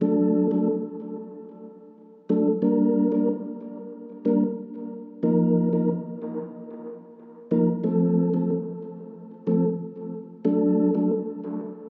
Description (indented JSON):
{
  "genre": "dancehall",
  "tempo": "92 BPM",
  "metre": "4/4",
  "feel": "straight",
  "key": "G minor",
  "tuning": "A4 = 440 Hz",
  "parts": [
    { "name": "mellow tonewheel organ", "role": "solo", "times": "0.0-11.1 s", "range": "F3 to Bb4", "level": "-26 LUFS", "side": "equal", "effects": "fast rotary speaker, tape echo" }
  ],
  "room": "moderate lush hall reverb, RT60 2.7 s",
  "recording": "recorded on a phone in the room, club reverb",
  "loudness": "-24 LUFS",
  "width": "mono",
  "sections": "0.0-11.9 A section",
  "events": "none",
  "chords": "0.0 D; 2.6 Gm; 5.2 Ebsus2; 7.8 F; 10.4 D"
}